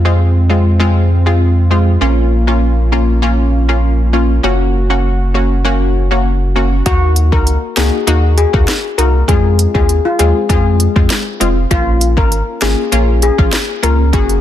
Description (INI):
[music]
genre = dancehall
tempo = 99 BPM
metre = 4/4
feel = straight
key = Bb minor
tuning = A4 = 436 Hz
[part]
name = analog pluck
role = accompaniment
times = 0.0-14.4 s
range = Ab3 to Gb4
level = -17 LUFS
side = left 1 dB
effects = chorus
[part]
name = warm analog pad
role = sustained chords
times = 0.0-6.8 s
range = Ab3 to Gb4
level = -23 LUFS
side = right 3 dB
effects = chorus, sidechain pumping
[part]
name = warm sub bass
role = bass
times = 0.0-14.4 s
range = F1 to F2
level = -12 LUFS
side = equal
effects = none
[part]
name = steel pan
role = melody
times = 6.9-14.4 s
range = F4 to Bb4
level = -17 LUFS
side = left 5 dB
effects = ping-pong delay
[part]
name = afro-pop drum kit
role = drums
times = 6.9-14.4 s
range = hi-hat, kick drum, rim click, snare drum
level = -15 LUFS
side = equal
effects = none
[sound]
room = digital ambience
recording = dense, heavily limited modern master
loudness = -10 LUFS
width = side -12 dB against mid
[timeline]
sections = 0.0-6.9 A section; 6.9-14.4 B section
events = none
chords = 0.0 Fm; 2.0 Bbm; 4.4 Gb; 6.9 Ebm; 9.3 Fm; 11.7 Bbm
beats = 0.19 0.80 1.41 | 2.01 2.62 3.22 3.83 | 4.44 5.04 5.65 6.25 | 6.86 7.47 8.07 8.68 | 9.29 9.89 10.50 11.10 | 11.71 12.31 12.92 13.53 | 14.13